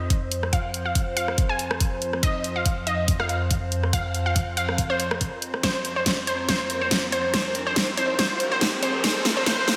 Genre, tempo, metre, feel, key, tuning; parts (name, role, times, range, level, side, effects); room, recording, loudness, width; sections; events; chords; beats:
heavy wobble dubstep; 141 BPM; 4/4; swing 55% on 16ths, half-time; A4 = 442 Hz
unison pluck; melody; 0.0-9.6 s; C5 to Ab5; -29 LUFS; equal; analog delay
evolving wavetable pad; sustained chords; 0.0-9.8 s; F2 to C5; -32 LUFS; equal; chorus, built-in reverb, phaser, sidechain pumping
dubstep drum kit; drums; 0.1-9.8 s; hi-hat, rim click, snare drum; -28 LUFS; equal
electronic kick drum; drums; 0.1-9.6 s; -28 LUFS; equal
riser; sound effects; 6.7-9.8 s; -35 LUFS; equal
wet lush hall reverb, RT60 1.9 s; dreamy mix soaked in reverb, high-pass filter; -24 LUFS; mono
0.0-9.8 A section
build-up 0.0-9.8; filter sweep 0.0-9.8; drum fill 5.6-9.8; riser 6.7-9.8
0.0 F5
0.10 | 0.53 0.95 1.38 1.80 | 2.23 2.66 3.08 3.51 | 3.93 4.36 4.78 5.21 | 5.63 6.06 6.49 6.91 | 7.34 7.76 8.19 8.61 | 9.04 9.46